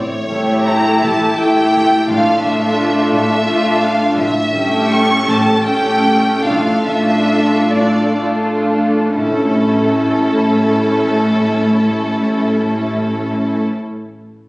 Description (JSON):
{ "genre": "classical", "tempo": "40-58 BPM (dotted quarters)", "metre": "6/8", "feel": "rubato", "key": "unclear", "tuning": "A4 = 437 Hz", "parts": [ { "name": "rich studio violin section", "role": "melody", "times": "0.0-13.6 s", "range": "A4 to C#6", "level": "-19 LUFS", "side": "equal", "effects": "none" }, { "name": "concert harp", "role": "arpeggios", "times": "0.0-13.9 s", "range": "A2 to D5", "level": "-23 LUFS", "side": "left 1 dB", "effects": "none" }, { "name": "rich studio double bass section", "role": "bass", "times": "0.0-13.6 s", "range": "A1", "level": "-29 LUFS", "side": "right 1 dB", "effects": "none" }, { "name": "warm chamber cello section", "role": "bass", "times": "0.0-13.6 s", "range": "A2", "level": "-21 LUFS", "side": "equal", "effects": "none" }, { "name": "warm studio violin section", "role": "second line", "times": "0.3-13.6 s", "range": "E4 to A4", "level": "-20 LUFS", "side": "equal", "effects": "none" }, { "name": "rich studio viola section", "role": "accompaniment", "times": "0.3-13.6 s", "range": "A3 to E4", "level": "-16 LUFS", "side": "equal", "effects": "none" } ], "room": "wet recital hall reverb, RT60 1.6 s", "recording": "recorded on a phone in the room, studio reverb", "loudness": "-12 LUFS", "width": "side -22 dB against mid", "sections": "0.0-9.2 A section; 9.2-14.5 B section", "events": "slowing down 3.1-9.2", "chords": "0.0 A7; 2.1 Dm/A; 4.2 A7; 6.4 Dm/A; 9.2 A" }